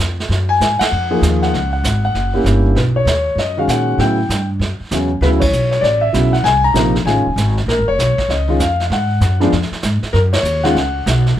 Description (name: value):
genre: jazz piano trio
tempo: 195 BPM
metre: 4/4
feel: swing 64% on 8ths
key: F# major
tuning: A4 = 440 Hz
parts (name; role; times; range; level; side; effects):
- upright bass; bass; 0.0-11.4 s; Eb1 to A#2; -17 LUFS; equal; none
- vintage brush drum kit; drums; 0.0-11.4 s; brushed snare drum, crash cymbal, hi-hat, kick drum, ride cymbal, snare drum; -23 LUFS; right 3 dB; none
- dark concert grand piano; melody; 0.5-11.4 s; B#2 to A#5; -16 LUFS; left 2 dB; none
room: light reverb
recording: none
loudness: -13 LUFS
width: side -11 dB against mid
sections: 0.0-2.8 A section; 2.8-11.4 B section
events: band accent 0.8, 5.4, 10.3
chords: 0.3 F#maj13; 1.5 C#5; 2.1 F#7b9; 2.8 B69; 4.0 A13; 5.2 D6; 6.5 A#9sus4; 7.1 F7alt; 7.7 A#m (rootless); 8.9 G#7(no3); 9.5 Fm; 10.1 F#5